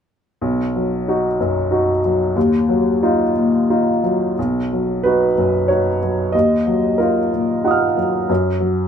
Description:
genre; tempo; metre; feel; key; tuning
neoclassical minimalist piano; 92 BPM; 3/4; rubato; unclear; A4 = 440 Hz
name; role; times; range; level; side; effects
clear upright piano; solo; 0.4-8.9 s; B1 to E#6; -15 LUFS; equal; none
room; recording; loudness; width
moderate stone room reverb, RT60 1.0 s; minimal, uncompressed stereo recording; -15 LUFS; side -8 dB against mid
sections
0.4-4.4 A section; 4.4-8.9 B section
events
none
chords
0.4 B; 2.4 D#madd9; 4.4 B; 6.3 D#madd9; 8.3 N.C.

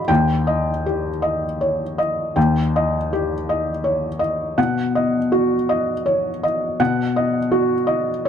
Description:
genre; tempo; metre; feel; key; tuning
neoclassical minimalist piano; 81 BPM; 3/4; rubato; unclear; A4 = 440 Hz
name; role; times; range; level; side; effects
felt-muted upright piano; solo; 0.0-8.3 s; D#2 to B5; -18 LUFS; left 1 dB; none
room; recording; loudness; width
light reverb; none; -18 LUFS; side -8 dB against mid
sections
0.1-8.3 A section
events
none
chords
0.1 D#; 4.6 B

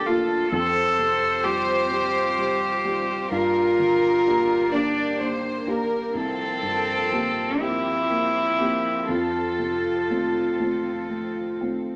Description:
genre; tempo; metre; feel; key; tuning
neoclassical piano and strings; 42 BPM (dotted quarters); 6/8; uneven beats, rubato; F major; A4 = 440 Hz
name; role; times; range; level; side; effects
warm studio violin section; melody; 0.0-11.3 s; G4 to D5; -30 LUFS; equal; none
rich cello; second line; 0.0-11.6 s; C4 to A4; -25 LUFS; equal; none
felt-muted upright piano; accompaniment; 0.0-12.0 s; C2 to A4; -32 LUFS; equal; none
warm chamber string section; sustained chords; 0.0-12.0 s; F3 to A4; -37 LUFS; equal; none
room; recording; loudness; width
moderate large studio reverb, RT60 1.2 s; none; -23 LUFS; mono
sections
0.0-12.0 A section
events
none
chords
0.0 Bbmaj7/D; 0.5 Fsus2; 3.3 Gm7; 6.1 C7sus4; 9.1 F

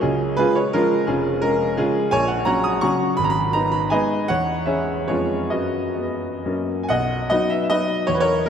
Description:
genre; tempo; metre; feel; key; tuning
classical, romantic triple-time dance for piano with dotted rhythms; 124-179 BPM; 3/4; rubato; B major; A4 = 439 Hz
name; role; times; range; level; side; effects
clear concert grand piano; solo; 0.0-8.5 s; E#1 to D#6; -18 LUFS; equal; none
room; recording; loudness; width
wet cathedral reverb, RT60 5.5 s; in a vast, echoing space; -18 LUFS; side -8 dB against mid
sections
0.0-6.9 A section; 6.9-8.5 B section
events
none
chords
0.0 C#; 1.1 C#/E#; 2.1 F#/A#; 3.2 G#m; 4.3 C#m/E; 5.1 C#7/E#; 5.5 B/F#; 6.5 F#; 6.9 B

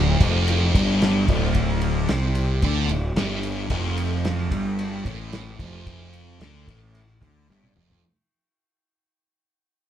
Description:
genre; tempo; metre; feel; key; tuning
psychedelic rock; 111 BPM; 4/4; straight; unclear; A4 = 440 Hz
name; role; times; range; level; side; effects
thick fuzz guitar; riff; 0.0-8.0 s; D2 to D3; -24 LUFS; equal; distortion, phaser
fuzz fingered electric bass; bass; 0.0-8.0 s; D1 to D2; -24 LUFS; equal; overdrive
cloth-damped thuddy drum kit; drums; 0.2-8.0 s; kick drum, ride cymbal, snare drum, toms; -26 LUFS; equal; none
room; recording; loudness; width
moderate studio reverb, RT60 0.6 s; band playing live in one room; -20 LUFS; side -10 dB against mid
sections
0.0-8.0 A section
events
fade-out 0.0-8.0; drum fill 7.5-8.0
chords
0.0 Dm; 3.7 F69

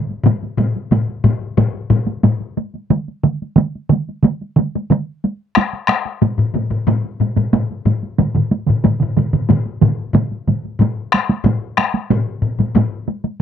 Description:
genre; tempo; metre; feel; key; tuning
japanese traditional, taiko drum ensemble; 91 BPM; 4/4; straight; none; none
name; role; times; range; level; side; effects
taiko ensemble; percussion; 0.1-13.4 s; none; -17 LUFS; right 2 dB; none
taiko ensemble; percussion; 0.2-12.9 s; none; -17 LUFS; left 3 dB; none
taiko ensemble; percussion; 2.9-10.6 s; none; -16 LUFS; right 5 dB; none
room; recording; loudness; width
light reverb; dry, close 1970s-style studio recording; -15 LUFS; side -9 dB against mid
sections
0.0-10.8 A section; 10.8-13.4 B section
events
speeding up 0.0-13.4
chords
none

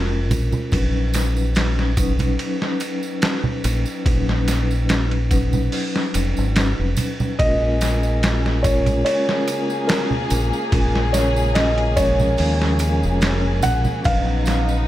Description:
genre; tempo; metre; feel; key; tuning
trip hop; 72 BPM; 4/4; swing 53% on 16ths; Bb phrygian; A4 = 440 Hz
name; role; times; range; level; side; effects
vibraphone with soft mallets; accompaniment; 0.0-14.9 s; F3 to B4; -25 LUFS; left 1 dB; tremolo, tape echo
deep dub fingered electric bass; bass; 0.0-14.9 s; F1 to Eb2; -20 LUFS; equal; none
trip hop sampler-style drum kit; drums; 0.3-14.7 s; hi-hat, kick drum, ride cymbal, snare drum; -23 LUFS; equal; none
congas and tambourine; percussion; 0.3-14.8 s; none; -27 LUFS; right 3 dB; none
felt-muted upright piano; melody; 7.4-14.9 s; Bb4 to Gb5; -23 LUFS; equal; tape echo
dark chamber string section; sustained chords; 7.4-14.9 s; Db3 to Ab4; -27 LUFS; left 1 dB; none
room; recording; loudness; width
studio reverb; none; -17 LUFS; side -14 dB against mid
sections
0.0-14.9 A section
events
none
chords
0.0 Bbm7; 0.7 Badd9/Bb; 7.4 Bbm7; 14.1 Badd9/Bb

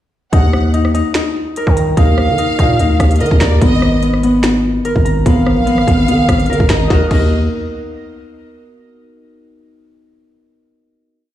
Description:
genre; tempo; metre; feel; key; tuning
hip hop, drill; 146 BPM; 4/4; half-time; Eb minor; A4 = 441 Hz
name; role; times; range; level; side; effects
rich studio violin section; second line; 0.3-7.3 s; D5 to Gb5; -21 LUFS; right 1 dB; ping-pong delay
Celtic harp; arpeggios; 0.3-7.3 s; Cb4 to Bb5; -16 LUFS; left 1 dB; ping-pong delay
growling 808-style bass; bass; 0.3-7.5 s; Ab1 to Eb3; -15 LUFS; equal; none
drill drum kit; drums; 0.3-7.2 s; crash cymbal, finger snaps, hi-hat, kick drum, rim click, snare drum; -14 LUFS; equal; none
room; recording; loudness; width
little or no reverb; played on a big sound system in a bare room, large studio reverb; -11 LUFS; side -12 dB against mid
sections
0.3-6.9 hook; 6.9-8.5 final chord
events
none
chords
0.3 Eb5; 3.6 Abmadd9; 6.9 Ebm

